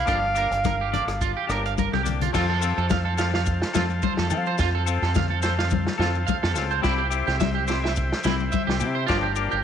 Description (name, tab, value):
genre	highlife guitar band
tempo	107 BPM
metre	4/4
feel	swing 54% on 16ths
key	F major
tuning	A4 = 442 Hz
part	warm clarinet	melody	0.0-1.7 s	F5	-26 LUFS	right 2 dB	none
part	electric guitar at the edge of break-up	arpeggios	0.0-9.6 s	E4 to F5	-28 LUFS	right 11 dB	slapback echo
part	deep dub fingered electric bass	bass	0.0-9.6 s	G1 to F3	-26 LUFS	equal	none
part	semi-hollow electric guitar	accompaniment	0.1-9.6 s	F3 to A4	-30 LUFS	left 10 dB	spring reverb
part	vintage drum kit	drums	0.1-9.2 s	crash cymbal, hi-hat, kick drum, rim click, snare drum	-29 LUFS	right 1 dB	none
part	congas	percussion	0.1-9.2 s	none	-29 LUFS	left 11 dB	none
part	maracas	percussion	0.1-9.6 s	none	-38 LUFS	left 11 dB	none
part	combo organ	sustained chords	2.4-9.6 s	Bb4 to A5	-32 LUFS	left 1 dB	none
room	moderate echo chamber reverb, RT60 2.0 s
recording	1960s-style stereo with parts hard left and right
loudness	-21 LUFS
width	side -8 dB against mid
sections	0.0-2.3 A section; 2.3-9.6 B section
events	drum fill 1.9-2.3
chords	0.1 Gm7; 2.3 F; 6.8 C; 9.1 Gm7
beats	| 0.08 0.65 1.21 1.78 | 2.34 2.91 3.47 4.04 | 4.60 5.16 5.72 6.28 | 6.84 7.41 7.97 8.53 | 9.09